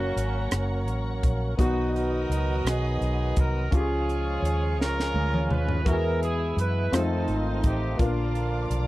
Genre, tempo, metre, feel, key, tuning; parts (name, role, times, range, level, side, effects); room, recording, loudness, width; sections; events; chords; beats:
slow gospel; 56 BPM (dotted quarters); 6/8; straight; F# major; A4 = 441 Hz
clear horn section; melody; 0.0-8.9 s; A#3 to B4; -30 LUFS; right 2 dB
clear grand piano; accompaniment; 0.0-8.9 s; A#2 to C5; -32 LUFS; left 2 dB
tonewheel organ; sustained chords; 0.0-8.9 s; C#3 to A#4; -34 LUFS; right 1 dB; fast rotary speaker, chorus vibrato
warm studio string section; sustained chords; 0.0-8.9 s; B3 to D#6; -40 LUFS; equal
vintage muted fingered electric bass; bass; 0.0-8.9 s; F#1 to F#2; -27 LUFS; equal
crisp fusion drum kit; drums; 0.2-8.9 s; hi-hat, kick drum, rim click, snare drum, toms; -26 LUFS; equal
little or no reverb; dry, close 1970s-style studio recording; -23 LUFS; side -17 dB against mid
0.0-8.9 A section
drum fill 4.8-5.9
0.0 F#; 1.6 B; 3.7 C#; 5.9 E; 6.9 F7; 8.0 A#
0.52 | 1.59 2.66 | 3.73 4.79 | 5.86 6.93 | 7.99